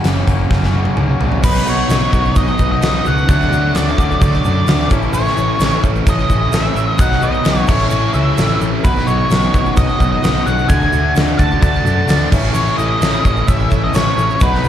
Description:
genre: classic rock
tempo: 130 BPM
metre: 4/4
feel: straight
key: unclear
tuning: A4 = 441 Hz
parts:
  - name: crunchy overdriven guitar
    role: riff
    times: 0.0-14.7 s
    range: F#2 to F#4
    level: -24 LUFS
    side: right 11 dB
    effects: slapback echo
  - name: raw garage guitar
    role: riff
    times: 0.0-14.7 s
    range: F#2 to F#4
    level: -21 LUFS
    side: left 8 dB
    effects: overdrive, slapback echo
  - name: fuzz picked electric bass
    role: bass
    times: 0.0-14.7 s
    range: F#1 to F#2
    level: -18 LUFS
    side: equal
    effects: overdrive
  - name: huge arena drum kit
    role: drums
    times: 0.0-14.6 s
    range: crash cymbal, hi-hat, kick drum, snare drum, toms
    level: -16 LUFS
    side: equal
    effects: none
  - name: octave-fuzz lead guitar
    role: melody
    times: 1.4-14.7 s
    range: B4 to A5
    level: -19 LUFS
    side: equal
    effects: distortion, slapback echo
  - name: bright upright piano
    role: accompaniment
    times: 1.4-14.7 s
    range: D#4 to F#5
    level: -27 LUFS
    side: right 2 dB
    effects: slapback echo
  - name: egg shaker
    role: percussion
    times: 1.4-14.7 s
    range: none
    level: -38 LUFS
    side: right 2 dB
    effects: none
room: little or no reverb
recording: live gig heard through the venue's PA, club reverb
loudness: -12 LUFS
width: side -10 dB against mid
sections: 0.0-1.4 A section; 1.4-14.7 B section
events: drum fill 0.5-1.4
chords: 0.0 F#; 1.4 B; 3.3 D; 4.9 A; 7.0 B; 7.7 A; 8.8 B; 10.7 D; 12.3 A

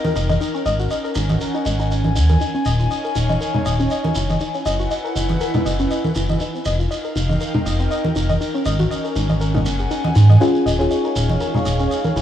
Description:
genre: deep house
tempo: 120 BPM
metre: 4/4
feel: swing 55% on 16ths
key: Eb minor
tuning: A4 = 441 Hz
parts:
  - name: warbly dusty pluck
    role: arpeggios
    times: 0.0-12.2 s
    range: Bb3 to Eb5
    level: -25 LUFS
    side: left 2 dB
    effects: chorus, analog delay
  - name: congas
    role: percussion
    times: 0.0-12.1 s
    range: none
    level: -23 LUFS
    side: right 1 dB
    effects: none
  - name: shekere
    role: percussion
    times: 0.0-12.2 s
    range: none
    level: -31 LUFS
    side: right 3 dB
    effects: none
  - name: airy breathy pad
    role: texture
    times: 0.0-12.2 s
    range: Db4 to Ab5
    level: -25 LUFS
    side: left 1 dB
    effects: chorus
  - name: rubbery square bass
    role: bass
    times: 0.2-12.2 s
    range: Eb1 to Ab2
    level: -18 LUFS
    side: equal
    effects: none
  - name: deep dark ambient pad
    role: sustained chords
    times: 10.9-12.2 s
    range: Ab4 to Db6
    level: -28 LUFS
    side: right 3 dB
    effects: chorus, built-in reverb
  - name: deep mellow chord stab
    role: stabs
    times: 10.4-12.1 s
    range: Db4 to Ab4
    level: -19 LUFS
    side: left 2 dB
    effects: chorus, cassette tape, analog delay
room: little or no reverb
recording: dry, gritty hardware recording, cassette tape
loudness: -16 LUFS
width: side -10 dB against mid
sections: 0.0-12.2 A section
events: none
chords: 0.4 Ab9sus4; 2.4 Eb9sus4; 4.2 Gb9sus4; 6.4 F9sus4; 8.4 Ab9sus4; 10.4 Eb9sus4

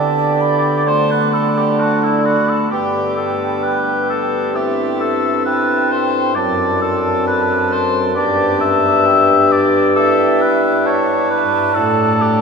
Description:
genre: classical, baroque-style sonata movement with continuo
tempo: 66 BPM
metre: 4/4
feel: straight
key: G major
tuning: A4 = 441 Hz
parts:
  - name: warm oboe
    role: melody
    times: 0.0-12.4 s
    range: E4 to E5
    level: -17 LUFS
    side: left 4 dB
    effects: none
  - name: baroque flute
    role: second line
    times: 0.0-12.4 s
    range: E5 to C6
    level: -21 LUFS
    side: right 6 dB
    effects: none
  - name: pipe organ, principal chorus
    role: accompaniment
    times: 0.0-12.4 s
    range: F#2 to A4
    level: -20 LUFS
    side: equal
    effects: none
  - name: dark bassoon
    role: bass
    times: 0.0-12.4 s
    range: F#2 to D3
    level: -19 LUFS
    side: equal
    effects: none
room: wet cathedral reverb, RT60 6.9 s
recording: recorded in a church or concert hall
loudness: -13 LUFS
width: side -5 dB against mid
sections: 0.0-12.4 A section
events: none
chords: 0.0 G/D; 0.9 D; 2.7 G; 4.6 Am7/G; 6.4 D7/F#; 8.2 G; 10.0 Em7/G; 11.8 D/A

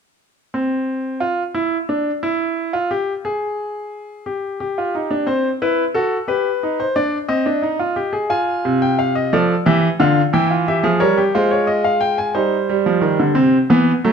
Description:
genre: classical, baroque-style 3-part fugue for grand piano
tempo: 59 BPM (dotted quarters)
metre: 6/8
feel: straight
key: unclear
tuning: A4 = 440 Hz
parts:
  - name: bright grand piano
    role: solo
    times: 0.5-14.1 s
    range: C3 to Ab5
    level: -16 LUFS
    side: equal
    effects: none
room: moderate recital hall reverb, RT60 1.3 s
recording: close, detailed microphones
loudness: -16 LUFS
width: side -6 dB against mid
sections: 0.2-14.1 A section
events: none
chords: 0.2 N.C.; 4.3 Dmadd11; 5.3 Cmaj7#11; 6.3 G; 7.3 Cm; 8.3 Fm; 9.3 G5; 10.3 Edim7; 11.3 Fm/Ab; 12.3 Cm/G; 13.4 Cmaj7

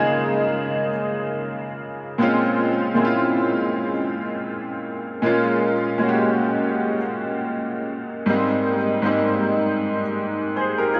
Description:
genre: R&B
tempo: 79 BPM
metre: 4/4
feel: swing 58% on 16ths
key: Bb dorian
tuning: A4 = 440 Hz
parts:
  - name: clear baby grand piano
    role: solo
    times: 0.0-11.0 s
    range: Ab2 to C5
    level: -22 LUFS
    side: equal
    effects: analog chorus, diffuse ambient delay
room: wet cathedral reverb, RT60 5.7 s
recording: dreamy mix soaked in reverb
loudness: -22 LUFS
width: mono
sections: 0.0-11.0 A section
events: none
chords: 0.0 Db69; 2.2 Bbm7; 8.3 Abmaj7

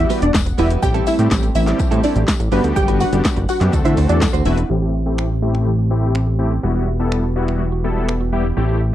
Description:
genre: dance-pop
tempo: 124 BPM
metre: 4/4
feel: straight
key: A dorian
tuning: A4 = 440 Hz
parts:
  - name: wide unison pluck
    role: melody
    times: 0.0-4.6 s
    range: B3 to G5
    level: -20 LUFS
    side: equal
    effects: sidechain pumping, slapback echo
  - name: big bright polysynth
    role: accompaniment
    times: 0.0-8.8 s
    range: G3 to B4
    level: -24 LUFS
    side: left 2 dB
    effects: tremolo, sidechain pumping, low-pass filter
  - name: chorused pulse-width pad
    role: sustained chords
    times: 0.0-8.9 s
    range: D3 to F#5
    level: -27 LUFS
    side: right 1 dB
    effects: sidechain pumping, low-pass filter
  - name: fat analog bass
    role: bass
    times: 0.0-8.9 s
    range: E1 to D3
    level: -18 LUFS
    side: equal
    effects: sidechain pumping
  - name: direct-recorded clean electric guitar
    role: riff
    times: 0.1-4.6 s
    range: G3 to C5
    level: -25 LUFS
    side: right 6 dB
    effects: wide subtle chorus
  - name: punchy analog drum machine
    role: drums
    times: 0.1-8.2 s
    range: finger snaps, handclaps, hi-hat, kick drum, shaker, snare drum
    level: -20 LUFS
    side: equal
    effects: none
  - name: tambourine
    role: percussion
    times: 0.1-4.3 s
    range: none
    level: -35 LUFS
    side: left 25 dB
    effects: none
  - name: mallet-like synth pluck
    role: arpeggios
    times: 4.7-8.9 s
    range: E3 to E5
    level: -30 LUFS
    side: right 12 dB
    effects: chorus, sidechain pumping, low-pass filter, slapback echo
room: little or no reverb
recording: dry, close 1970s-style studio recording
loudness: -15 LUFS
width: side -12 dB against mid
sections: 0.0-4.7 A section; 4.7-8.9 B section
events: drop 0.0-4.7; filter sweep 4.7-8.9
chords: 0.0 Emadd9; 0.8 Am7; 2.5 Gmaj7; 3.7 D7; 4.7 Am7; 6.6 Emadd9

